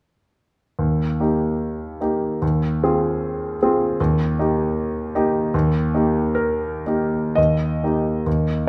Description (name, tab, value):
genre	classical, romantic character piece for solo piano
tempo	54-78 BPM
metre	2/4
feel	rubato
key	Eb major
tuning	A4 = 440 Hz
part	clear concert grand piano	solo	0.8-8.7 s	Eb2 to Eb5	-21 LUFS	equal	none
room	moderate recital hall reverb, RT60 1.4 s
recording	close, detailed microphones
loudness	-21 LUFS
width	mono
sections	0.8-7.4 A section; 7.4-8.7 B section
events	none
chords	0.8 Eb; 2.4 Fm7/Eb; 4.0 Eb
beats	| 0.79 1.61 | 2.42 3.22 | 3.99 4.75 | 5.53 6.37 | 7.37 8.26